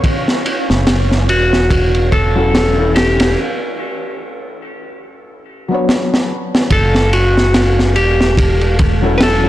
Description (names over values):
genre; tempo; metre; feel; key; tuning
trip hop; 72 BPM; 4/4; swing 57% on 16ths; F# phrygian; A4 = 436 Hz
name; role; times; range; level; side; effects
felt-muted upright piano; accompaniment; 0.0-9.5 s; E3 to C#5; -20 LUFS; left 3 dB; harmonic tremolo, tape echo
crunchy breakbeat drum kit; drums; 0.0-9.4 s; kick drum, ride cymbal, snare drum; -16 LUFS; equal; none
wind-like tuned noise texture; texture; 0.0-9.5 s; A3 to C#5; -26 LUFS; right 1 dB; built-in reverb
modern bright fingered electric bass; bass; 0.7-9.5 s; E1 to F#1; -15 LUFS; equal; transformer saturation
clean lap steel guitar; melody; 1.3-9.5 s; F#4 to B4; -17 LUFS; equal; tape echo
room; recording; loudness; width
light reverb, small room ambience; blown-out, overdriven recording, overdrive; -11 LUFS; side -14 dB against mid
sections
0.0-6.7 A section; 6.7-9.5 B section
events
break 3.4-6.7; drum fill 5.9-6.7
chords
0.0 F#m7; 3.4 Bm; 6.7 F#m7